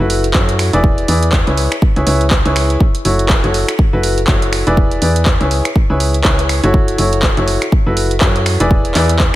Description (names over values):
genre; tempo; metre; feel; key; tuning
piano house; 122 BPM; 4/4; swing 58% on 16ths; F# minor; A4 = 437 Hz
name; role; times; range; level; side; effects
clear upright piano; riff; 0.0-9.3 s; E4 to D5; -17 LUFS; equal; vintage 12-bit sampler grit, sidechain pumping, ping-pong delay
solid FM bass; bass; 0.0-9.3 s; E1 to F#2; -16 LUFS; equal; sidechain pumping
punchy analog drum machine; drums; 0.1-9.3 s; finger snaps, handclaps, hi-hat; -19 LUFS; right 1 dB; none
electronic kick drum; drums; 0.3-9.3 s; none; -13 LUFS; equal; none
room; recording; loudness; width
little or no reverb; none; -11 LUFS; side -15 dB against mid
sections
0.0-9.4 A section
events
none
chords
0.0 F#m7; 0.8 E7; 1.6 C#m7; 2.8 F#m7; 4.8 E7; 5.5 C#m7; 6.7 F#m7; 8.7 E7